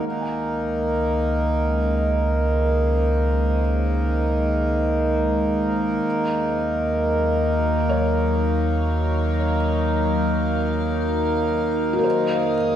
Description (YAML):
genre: ambient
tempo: free time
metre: none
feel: none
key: unclear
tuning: A4 = 441 Hz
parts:
  - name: evolving wavetable pad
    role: sustained chords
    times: 0.0-12.8 s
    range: Gb3 to F5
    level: -28 LUFS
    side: left 1 dB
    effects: chorus, built-in reverb, phaser
  - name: felt-muted upright piano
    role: arpeggios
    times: 0.0-12.8 s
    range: Gb4 to Ab5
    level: -31 LUFS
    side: left 2 dB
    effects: diffuse ambient delay
  - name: pedal harmonium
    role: drone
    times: 0.0-12.8 s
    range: Eb3 to Bb3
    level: -22 LUFS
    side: right 1 dB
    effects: none
  - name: warm sub bass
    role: bass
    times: 0.1-12.8 s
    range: Db2 to F2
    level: -24 LUFS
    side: equal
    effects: none
  - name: drifting glass-harmonics texture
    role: texture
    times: 12.2-12.8 s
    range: Eb6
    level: -41 LUFS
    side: equal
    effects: chorus, built-in reverb
room: wet scoring stage reverb, RT60 1.9 s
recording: none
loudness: -19 LUFS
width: side -10 dB against mid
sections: 0.1-12.8 A section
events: fade-in on ambient pad 0.1-12.8; fade-in on felt piano 0.1-12.8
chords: 0.1 Db5; 6.1 Ebm9; 12.1 Fm7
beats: free time